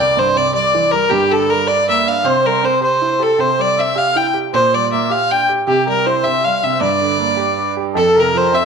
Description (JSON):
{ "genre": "celtic folk, Celtic jig", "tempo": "105 BPM (dotted quarters)", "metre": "6/8", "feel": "straight", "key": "unclear", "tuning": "A4 = 441 Hz", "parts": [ { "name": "clear fiddle", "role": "melody", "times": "0.0-8.7 s", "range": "G4 to G5", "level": "-14 LUFS", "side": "equal", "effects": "slapback echo" }, { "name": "mellow accordion", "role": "second line", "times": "0.0-8.7 s", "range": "G4 to G5", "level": "-22 LUFS", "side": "left 13 dB", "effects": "none" }, { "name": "clear grand piano", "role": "accompaniment", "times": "0.0-8.7 s", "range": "C2 to G4", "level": "-20 LUFS", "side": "right 12 dB", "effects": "none" } ], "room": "moderate spring reverb, RT60 2.4 s", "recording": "1960s-style stereo with parts hard left and right", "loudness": "-13 LUFS", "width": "side -6 dB against mid", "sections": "0.0-7.9 A section", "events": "none", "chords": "0.0 Cadd9; 1.1 Gm; 2.2 C; 4.5 Gm/Bb; 5.7 C; 6.8 Gm; 7.9 F" }